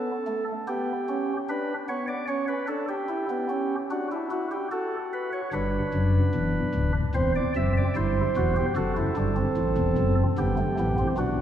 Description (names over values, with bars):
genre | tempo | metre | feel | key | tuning
classical, baroque-style 4-part fugue for pipe organ | 74 BPM | 4/4 | straight | G major | A4 = 441 Hz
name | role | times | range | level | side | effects
chamber organ, flutes | solo | 0.0-11.4 s | D1 to E5 | -24 LUFS | equal | none
room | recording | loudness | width
wet church reverb, RT60 3.3 s | heard from further back in the room | -24 LUFS | side -10 dB against mid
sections
0.0-5.5 A section; 5.5-11.4 B section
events
none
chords
0.0 N.C.; 0.7 G/B; 2.3 A7/C#; 3.9 D; 5.5 G; 7.1 C/E; 8.8 D7/F#; 10.4 G